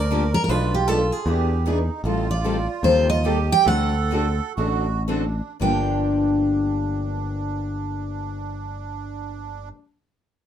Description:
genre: acoustic string swing (jazz manouche)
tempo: 108-154 BPM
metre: 4/4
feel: swing 63% on 8ths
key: G minor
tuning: A4 = 440 Hz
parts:
  - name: picked steel-string acoustic guitar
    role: melody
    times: 0.0-9.7 s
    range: G4 to G5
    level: -23 LUFS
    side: right 2 dB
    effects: none
  - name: accordion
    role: second line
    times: 0.0-9.7 s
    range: D4 to Bb4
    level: -30 LUFS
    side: right 7 dB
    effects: light tremolo tuning
  - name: modern bright picked electric bass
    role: bass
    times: 0.0-9.7 s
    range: G1 to E2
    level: -24 LUFS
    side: equal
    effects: none
  - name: picked steel-string acoustic guitar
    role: accompaniment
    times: 0.1-9.8 s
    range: G2 to A4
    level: -27 LUFS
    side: left 5 dB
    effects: none
  - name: picked steel-string acoustic guitar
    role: accompaniment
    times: 0.1-9.8 s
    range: G2 to B4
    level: -30 LUFS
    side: right 2 dB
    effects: none
room: moderate small room ambience, RT60 0.5 s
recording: minimal, uncompressed stereo recording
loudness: -20 LUFS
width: side -9 dB against mid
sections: 0.0-2.0 A section; 2.0-5.6 B section; 5.6-10.1 C section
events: slowing down 2.0-5.6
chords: 0.5 Bm7b5; 1.3 E7; 2.0 Am7b5; 3.7 D7; 5.6 Gm7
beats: 0.10 | 0.49 0.88 1.26 1.65 | 2.04 2.43 2.83 3.24 | 3.66 4.11 4.58 5.07 | 5.61 6.17 6.72 7.28 | 7.84 8.40 8.96 9.51

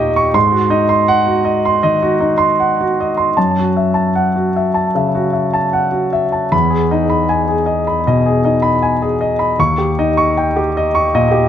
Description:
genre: neoclassical minimalist piano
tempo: 78 BPM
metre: 4/4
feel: uneven beats, rubato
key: E major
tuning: A4 = 441 Hz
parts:
  - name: warm concert grand piano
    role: solo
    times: 0.0-11.5 s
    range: D#2 to C#6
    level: -12 LUFS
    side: equal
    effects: slapback echo
room: light reverb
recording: close, detailed microphones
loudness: -12 LUFS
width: side -9 dB against mid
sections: 0.0-11.5 A section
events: none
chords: 0.3 G#7; 3.4 F#m7; 6.5 Emaj7; 9.6 D#7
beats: | 0.35 1.08 1.83 2.59 | 3.36 4.15 4.94 5.72 | 6.52 7.30 8.07 8.82 | 9.58 10.34 11.10

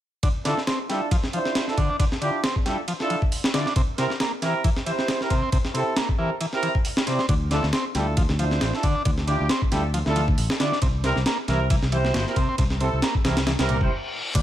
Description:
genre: breakbeat, breaks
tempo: 136 BPM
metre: 4/4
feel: swing 55% on 16ths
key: D minor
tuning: A4 = 440 Hz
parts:
  - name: overdriven combo organ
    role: riff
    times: 0.2-14.4 s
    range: Bb2 to D4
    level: -28 LUFS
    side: equal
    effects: low-pass filter, ping-pong delay
  - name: breakbeat sampler-style drum kit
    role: drums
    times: 0.2-14.4 s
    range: crash cymbal, hi-hat, kick drum, ride cymbal, snare drum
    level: -24 LUFS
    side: equal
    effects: studio reverb
  - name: warm brass ensemble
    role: stabs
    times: 0.5-13.9 s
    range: C4 to D5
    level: -28 LUFS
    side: right 2 dB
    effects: low-pass filter, ping-pong delay
  - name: picked electric bass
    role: bass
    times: 7.3-14.4 s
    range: G1 to D2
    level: -24 LUFS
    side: equal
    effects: none
  - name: reverse cymbal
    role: sound effects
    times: 13.7-14.3 s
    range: none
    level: -31 LUFS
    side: left 2 dB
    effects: none
  - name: electronic hi-hat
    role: drums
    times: 14.3-14.4 s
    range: none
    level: -33 LUFS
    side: right 1 dB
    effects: overdrive, studio reverb
room: light reverb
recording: none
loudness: -21 LUFS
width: side -12 dB against mid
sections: 0.2-14.3 A section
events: reverse cymbal 13.7-14.3; stop 13.9-14.3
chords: 0.2 Dmadd9; 3.8 C7; 7.3 Dmadd9; 10.8 C7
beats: | 0.23 0.67 1.11 1.55 | 2.00 2.44 2.88 3.32 | 3.76 4.20 4.64 5.08 | 5.53 5.97 6.41 6.85 | 7.29 7.73 8.17 8.61 | 9.05 9.50 9.94 10.38 | 10.82 11.26 11.70 12.14 | 12.59 13.03 13.47 13.91 | 14.35

